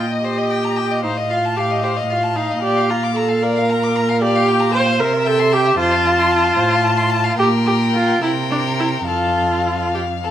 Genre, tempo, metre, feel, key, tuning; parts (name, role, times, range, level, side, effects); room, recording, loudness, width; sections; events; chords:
quick classical-period movement for string quartet; 69-76 BPM (dotted quarters); 6/8; rubato; Bb major, F major from 4.2 s; A4 = 440 Hz
warm violin; melody; 0.0-10.3 s; Eb5 to A5; -24 LUFS; left 8 dB
clear violin; second line; 0.0-10.3 s; G4 to D6; -22 LUFS; left 3 dB
warm viola; accompaniment; 0.0-9.9 s; D4 to C5; -18 LUFS; right 2 dB
warm cello; bass; 0.0-10.3 s; F2 to C3; -21 LUFS; right 2 dB
moderate large studio reverb, RT60 1.4 s; -15 LUFS; side -11 dB against mid
0.0-10.3 A section
0.0 Cm7/Bb (rootless); 1.0 F7/A; 2.6 Bb; 4.2 Gm7/Bb; 5.0 C; 5.8 F; 6.6 F/A; 7.4 Gm/Bb; 8.2 C5; 9.1 F